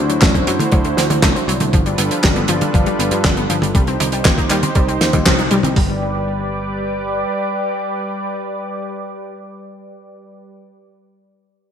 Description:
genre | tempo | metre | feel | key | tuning
italo disco | 119 BPM | 4/4 | straight | G major | A4 = 440 Hz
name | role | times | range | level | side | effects
warm analog pad | sustained chords | 0.0-10.6 s | D3 to D6 | -21 LUFS | right 1 dB | wide subtle chorus
analog pluck | arpeggios | 0.0-6.0 s | F3 to Eb4 | -22 LUFS | left 2 dB | chorus, ping-pong delay
picked electric bass | bass | 0.0-7.2 s | G1 to G2 | -22 LUFS | equal | none
damped 70s drum kit | drums | 0.1-5.7 s | handclaps, hi-hat, snare drum, toms | -18 LUFS | right 1 dB | small room reverb, gated reverb
clean 12-bit digital drum machine | drums | 0.2-5.9 s | hi-hat, kick drum | -16 LUFS | equal | small room reverb
room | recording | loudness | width
moderate plate reverb, RT60 2.2 s | bright 1980s-style digital production | -14 LUFS | side -8 dB against mid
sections
0.0-5.8 A section; 5.8-9.8 B section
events
band accent 5.3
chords
0.0 D7; 1.7 G7; 3.7 Cm; 5.8 G

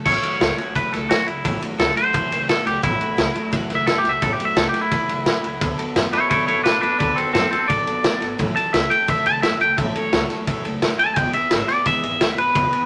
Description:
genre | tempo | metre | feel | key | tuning
rockabilly | 173 BPM | 4/4 | straight | A major | A4 = 440 Hz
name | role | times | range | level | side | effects
picked steel-string acoustic guitar | accompaniment | 0.0-12.9 s | A2 to A4 | -30 LUFS | equal | none
twangy electric guitar | melody | 0.1-12.9 s | C4 to A5 | -22 LUFS | equal | none
upright bass | bass | 0.1-12.8 s | E1 to A2 | -34 LUFS | equal | none
vintage drum kit | drums | 0.1-12.8 s | crash cymbal, kick drum, ride cymbal, snare drum | -24 LUFS | equal | none
room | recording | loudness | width
moderate club reverb, RT60 0.8 s | none | -20 LUFS | mono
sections
0.1-12.9 A section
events
clean electric guitar solo 0.1-12.9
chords
0.1 A6; 5.6 D6; 8.4 A6; 11.2 E6

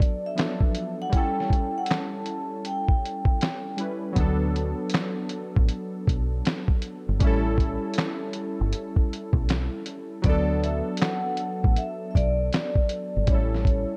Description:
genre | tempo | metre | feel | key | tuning
lo-fi hip hop | 79 BPM | 4/4 | swing 65% on 16ths | D major | A4 = 442 Hz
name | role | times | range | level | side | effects
vibraphone with medium hard mallets | melody | 0.0-3.8, 10.3-14.0 s | C#5 to A5 | -32 LUFS | equal | none
warm analog keys | accompaniment | 0.0-14.0 s | F3 to B4 | -32 LUFS | equal | chorus
lo-fi sampler-style drum kit | drums | 0.0-13.9 s | handclaps, hi-hat, kick drum, snare drum | -26 LUFS | equal | none
deep dub fingered electric bass | bass | 4.2-13.8 s | G1 to D2 | -28 LUFS | equal | none
room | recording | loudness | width
digital ambience | dark, warm production | -26 LUFS | mono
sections
0.0-14.0 A section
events
break 0.0-4.2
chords
0.0 D6; 1.1 A7; 4.2 D6; 7.2 A7; 10.2 D6; 13.3 A7

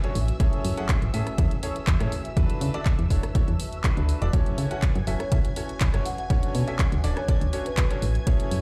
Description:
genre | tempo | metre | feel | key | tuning
piano house | 122 BPM | 4/4 | straight | unclear | A4 = 440 Hz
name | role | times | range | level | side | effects
analog string pad | sustained chords | 0.0-8.6 s | E5 to G#6 | -45 LUFS | equal | ensemble chorus, vintage 12-bit sampler grit, sidechain pumping
bright grand piano | riff | 0.0-8.6 s | C#4 to F#5 | -36 LUFS | equal | sidechain pumping, dub echo
garage drum kit | drums | 0.0-8.6 s | handclaps, hi-hat, rim click | -36 LUFS | equal | none
warbly tape-like pad | texture | 0.0-8.6 s | F#4 to A5 | -44 LUFS | equal | none
solid FM bass | bass | 0.2-8.6 s | D1 to C#3 | -28 LUFS | equal | sidechain pumping
electronic kick drum | drums | 0.4-8.4 s | none | -26 LUFS | equal | overdrive
marimba with medium mallets | melody | 5.2-7.9 s | B4 to F#5 | -39 LUFS | equal | dub echo
room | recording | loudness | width
little or no reverb | played on a big sound system in a bare room, large studio reverb | -25 LUFS | mono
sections
0.0-8.6 A section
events
none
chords
0.2 Amaj7; 2.4 E9sus4; 4.3 F#m7; 6.1 Dmaj7; 8.0 Amaj7

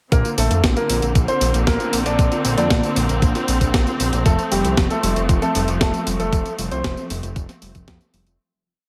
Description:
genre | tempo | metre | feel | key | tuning
italo disco | 116 BPM | 4/4 | straight | F major | A4 = 440 Hz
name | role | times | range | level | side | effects
warm grand piano | melody | 0.1-7.0 s | G3 to D5 | -26 LUFS | equal | tape echo
rich symphonic string section | sustained chords | 0.1-8.4 s | D3 to C4 | -27 LUFS | equal | none
soft round pluck | arpeggios | 0.1-8.3 s | F3 to F4 | -32 LUFS | equal | none
chorused synth bass | bass | 0.1-8.4 s | F1 to F2 | -24 LUFS | equal | none
clean 12-bit digital drum machine | drums | 0.1-8.4 s | hi-hat, snare drum, tambourine | -27 LUFS | equal | overdrive, gated reverb
electronic kick drum | drums | 0.1-8.0 s | none | -21 LUFS | equal | overdrive
room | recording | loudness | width
light reverb | none | -19 LUFS | mono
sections
0.1-8.4 chorus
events
fade-out 5.6-8.4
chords
0.1 Bbadd9; 4.3 F

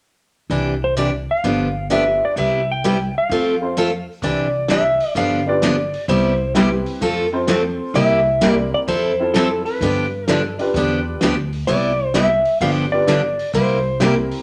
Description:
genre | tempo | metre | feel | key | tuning
country, western swing | 129 BPM | 4/4 | swing 68% on 8ths | C major | A4 = 440 Hz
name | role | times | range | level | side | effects
picked steel-string acoustic guitar | accompaniment | 0.5-14.1 s | C3 to A4 | -21 LUFS | equal | none
upright bass | bass | 0.5-14.3 s | G1 to G2 | -29 LUFS | equal | none
clean lap steel guitar | melody | 0.8-14.0 s | A4 to G5 | -22 LUFS | equal | none
clear upright piano | accompaniment | 1.9-14.4 s | C4 to C5 | -26 LUFS | equal | none
vintage drum kit | drums | 4.2-14.4 s | hi-hat, kick drum, snare drum | -28 LUFS | equal | none
room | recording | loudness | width
wet studio reverb, RT60 0.8 s | none | -18 LUFS | mono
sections
0.5-4.2 A section; 4.2-14.4 B section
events
none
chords
0.5 Cadd9; 1.4 G7; 2.4 Cmaj7; 3.3 F; 4.2 Cadd9; 5.2 G7; 6.1 Cmaj7; 7.0 F; 8.0 C7; 8.9 Fmaj7; 9.8 G7; 11.7 Cmaj7; 12.6 G7; 13.5 C7

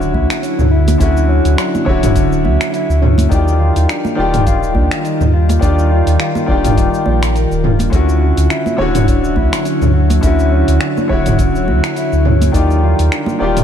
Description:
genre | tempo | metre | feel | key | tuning
sunset chillout | 104 BPM | 4/4 | swing 56% on 16ths | D major | A4 = 438 Hz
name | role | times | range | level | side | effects
bright concert grand piano | accompaniment | 0.0-13.6 s | D3 to D5 | -18 LUFS | left 1 dB | auto-pan, ping-pong delay
ethereal airy pad | sustained chords | 0.0-13.6 s | D3 to D5 | -20 LUFS | left 1 dB | ensemble chorus, built-in reverb
mellow electric guitar | arpeggios | 0.0-13.6 s | C#4 to D5 | -22 LUFS | left 1 dB | ping-pong delay
warm sub bass | bass | 0.0-13.6 s | D1 to Eb2 | -14 LUFS | equal | none
deep house drum kit | drums | 0.0-13.6 s | cabasa, finger snaps, hi-hat, toms | -19 LUFS | right 1 dB | none
electronic kick drum | drums | 0.1-12.7 s | none | -17 LUFS | equal | none
congas | percussion | 0.1-13.4 s | none | -24 LUFS | right 3 dB | none
room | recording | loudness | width
light reverb | none | -11 LUFS | side -9 dB against mid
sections
0.0-13.6 A section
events
none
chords
0.0 Dmaj9; 3.3 Ebmaj9; 7.9 Dmaj9; 12.5 Ebmaj9

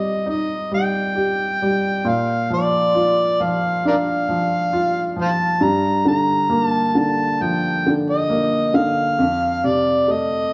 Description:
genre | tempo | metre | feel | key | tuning
acoustic folk-pop ballad | 67 BPM | 4/4 | straight | Bb major | A4 = 440 Hz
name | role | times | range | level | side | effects
overdriven harmonica | melody | 0.0-10.5 s | Bb4 to Bb5 | -22 LUFS | equal | none
warm upright piano | accompaniment | 0.0-10.5 s | F2 to G4 | -23 LUFS | equal | none
room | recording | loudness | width
moderate plate reverb, RT60 2.3 s | none | -19 LUFS | mono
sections
0.0-10.5 A section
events
none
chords
0.0 Cm; 2.1 Bb; 5.6 Gm7; 9.2 F7

